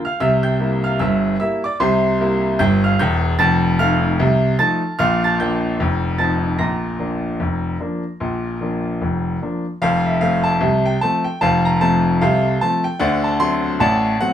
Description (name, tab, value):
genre	ragtime piano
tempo	75 BPM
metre	2/4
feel	swing 57% on 16ths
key	Bb major, F major from 9.8 s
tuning	A4 = 438 Hz
part	bright grand piano	solo	0.0-14.3 s	E1 to Bb6	-16 LUFS	equal	none
room	wet studio ambience, RT60 0.5 s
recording	band playing live in one room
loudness	-16 LUFS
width	side -10 dB against mid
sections	0.0-9.8 A section; 9.8-14.3 B section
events	none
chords	0.2 C7; 3.4 F7; 5.0 Bb; 5.8 F7; 6.6 Bb; 9.8 F; 13.0 D7